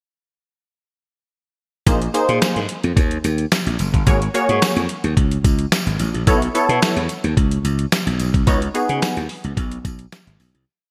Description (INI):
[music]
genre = early-eighties boogie funk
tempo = 109 BPM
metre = 4/4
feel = straight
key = Bb phrygian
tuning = A4 = 439 Hz
[part]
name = funky polysynth comp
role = accompaniment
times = 1.9-9.2 s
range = Bb3 to Db5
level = -22 LUFS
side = equal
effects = chorus
[part]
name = slap bass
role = bass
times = 1.9-10.6 s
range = Gb1 to Db3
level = -22 LUFS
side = equal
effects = none
[part]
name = detuned 8-bit digital drum machine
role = drums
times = 1.9-10.7 s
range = hi-hat, kick drum, snare drum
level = -22 LUFS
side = equal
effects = gated reverb
[part]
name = tambourine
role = percussion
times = 1.9-10.5 s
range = none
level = -37 LUFS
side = equal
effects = none
[sound]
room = light reverb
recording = bright 1980s-style digital production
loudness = -19 LUFS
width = mono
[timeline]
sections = 1.9-10.7 verse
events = fade-out 8.5-10.7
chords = 1.9 Bb9sus4; 4.1 Ab9sus4; 6.3 B9sus4; 8.5 Db9sus4